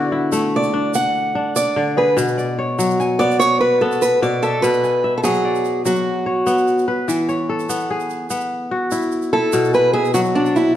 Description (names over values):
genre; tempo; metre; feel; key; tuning
west african traditional, West African string and xylophone music; 98 BPM (dotted quarters); 12/8; straight; unclear; A4 = 439 Hz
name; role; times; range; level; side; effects
kora; arpeggios; 0.0-10.8 s; B2 to G#5; -19 LUFS; left 1 dB; none
tube shaker; percussion; 0.3-10.6 s; none; -32 LUFS; right 8 dB; none
fingerpicked acoustic archtop guitar; melody; 0.6-10.7 s; D4 to F#5; -17 LUFS; right 1 dB; none
room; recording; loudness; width
moderate recital hall reverb, RT60 1.6 s; dark, warm production; -16 LUFS; side -11 dB against mid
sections
0.0-4.6 A section; 4.6-10.8 B section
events
steel-string acoustic guitar solo 0.0-4.6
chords
0.0 D; 2.2 Bm; 7.1 E; 9.5 Bm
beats
0.32 0.94 1.55 | 2.17 2.79 3.40 4.01 | 4.63 5.24 5.85 6.47 | 7.08 7.69 8.30 8.92 | 9.53 10.14 10.75